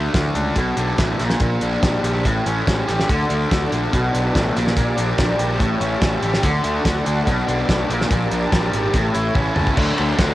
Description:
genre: indie rock.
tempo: 143 BPM.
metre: 4/4.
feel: straight.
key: D major.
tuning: A4 = 443 Hz.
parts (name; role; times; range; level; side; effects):
fuzz guitar; riff; 0.0-10.3 s; A2 to A4; -21 LUFS; equal; distortion.
fuzz picked electric bass; bass; 0.0-10.3 s; G#1 to D2; -23 LUFS; equal; overdrive.
cloth-damped thuddy drum kit; drums; 0.1-10.3 s; crash cymbal, hi-hat, kick drum, ride cymbal, snare drum, toms; -21 LUFS; equal; cassette tape.
ensemble organ-string; sustained chords; 3.1-9.8 s; F#4 to A5; -26 LUFS; equal; ensemble chorus.
room: light reverb, studio ambience.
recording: home recording on cassette.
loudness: -17 LUFS.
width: side -15 dB against mid.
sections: 0.0-9.8 A section.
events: drum fill 9.4-9.8.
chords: 0.0 D5; 0.6 Bm7; 1.2 Gm/Bb; 2.2 A7; 3.1 D; 3.9 Bm7; 4.6 Gmadd9/Bb; 5.6 A7; 6.4 D; 7.3 Bm7; 7.9 Gmadd9/Bb; 8.9 A7; 9.8 D.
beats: 0.14 0.56 0.99 | 1.41 1.83 2.25 2.67 | 3.09 3.51 3.93 4.35 | 4.76 5.18 5.60 6.02 | 6.44 6.86 7.27 7.69 | 8.11 8.52 8.94 9.36 | 9.77 10.19.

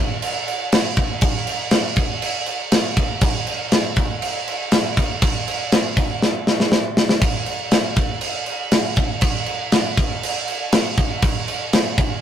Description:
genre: metal.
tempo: 120 BPM.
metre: 4/4.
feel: straight.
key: none.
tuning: none.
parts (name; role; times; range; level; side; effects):
tight metal drum kit; drums; 0.2-12.1 s; crash cymbal, kick drum, snare drum; -17 LUFS; equal; none.
room: light reverb.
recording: rough rehearsal-room recording, warm saturation.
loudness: -17 LUFS.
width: side -9 dB against mid.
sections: 0.0-12.2 A section.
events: drum fill 6.2-7.2.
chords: none.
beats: 0.22 0.72 | 1.22 1.72 2.22 2.72 | 3.22 3.71 4.21 4.71 | 5.21 5.71 6.21 6.71 | 7.21 7.72 8.22 8.72 | 9.22 9.72 10.22 10.72 | 11.23 11.73.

